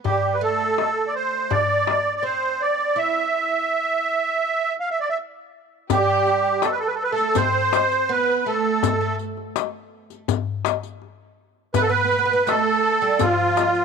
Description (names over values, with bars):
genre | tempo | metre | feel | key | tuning
Arabic maqam ensemble | 82 BPM | 4/4 | straight | unclear | A4 = 440 Hz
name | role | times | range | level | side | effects
oud | second line | 0.0-13.8 s | F3 to E4 | -28 LUFS | right 8 dB | none
musette accordion | melody | 0.1-13.8 s | F4 to F5 | -20 LUFS | right 2 dB | none
darbuka | percussion | 0.1-13.8 s | none | -25 LUFS | left 9 dB | none
rich symphonic violin section | second line | 5.9-13.8 s | F4 to C5 | -30 LUFS | left 3 dB | none
riq | percussion | 5.9-13.8 s | none | -29 LUFS | left 18 dB | none
room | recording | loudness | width
light reverb, small room ambience | 1960s-style stereo with parts hard left and right | -19 LUFS | side -6 dB against mid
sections
0.0-5.9 A section; 5.9-13.8 B section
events
none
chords
none